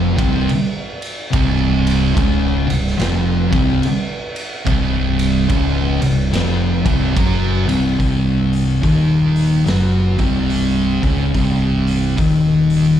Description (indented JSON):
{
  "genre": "stoner and doom metal",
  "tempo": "72 BPM",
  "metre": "4/4",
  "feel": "swing 63% on 8ths",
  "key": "C minor",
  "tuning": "A4 = 440 Hz",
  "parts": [
    { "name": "thick fuzz guitar", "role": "riff", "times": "0.0-13.0 s", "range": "C2 to F#3", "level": "-19 LUFS", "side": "left 8 dB", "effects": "distortion, slapback echo" },
    { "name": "thick fuzz guitar", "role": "riff", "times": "0.0-13.0 s", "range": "C2 to F#3", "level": "-18 LUFS", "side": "right 5 dB", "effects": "distortion, slapback echo" },
    { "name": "growling picked electric bass", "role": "bass", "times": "0.0-13.0 s", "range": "C1 to F#1", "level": "-21 LUFS", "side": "equal", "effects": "overdrive" },
    { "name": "raw garage drum kit", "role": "drums", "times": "0.2-12.8 s", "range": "hi-hat, kick drum, ride cymbal, snare drum", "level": "-22 LUFS", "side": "equal", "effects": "none" }
  ],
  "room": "light reverb",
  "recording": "live gig heard through the venue's PA, club reverb",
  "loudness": "-14 LUFS",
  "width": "side -10 dB against mid",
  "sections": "0.0-8.0 A section; 8.0-13.0 B section",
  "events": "none",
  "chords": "0.0 Dbmaj7/C; 8.0 Cm"
}